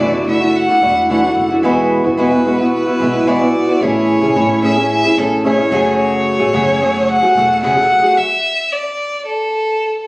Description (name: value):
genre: pop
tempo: 110 BPM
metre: 4/4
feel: straight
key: unclear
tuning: A4 = 439 Hz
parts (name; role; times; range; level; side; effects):
- rich violin; melody; 0.0-10.0 s; A4 to F#5; -16 LUFS; equal; none
- fingerpicked twelve-string acoustic guitar; accompaniment; 0.0-8.2 s; F#2 to G#4; -13 LUFS; equal; none
- upright bass; bass; 0.0-7.9 s; E1 to B1; -27 LUFS; equal; none
room: moderate small room reverb, RT60 0.5 s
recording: recorded on a phone in the room, club reverb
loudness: -12 LUFS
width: side -23 dB against mid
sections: 0.0-10.1 A section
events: stop 8.2-10.1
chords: 0.0 Dadd9; 1.6 Eadd9; 3.8 Amaj7; 5.7 F#madd9; 8.2 N.C.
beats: 0.00 0.54 1.09 | 1.63 2.18 2.72 3.27 | 3.81 4.36 4.90 5.44 | 5.99 6.53 7.08 7.62 | 8.17 8.71 9.26 9.80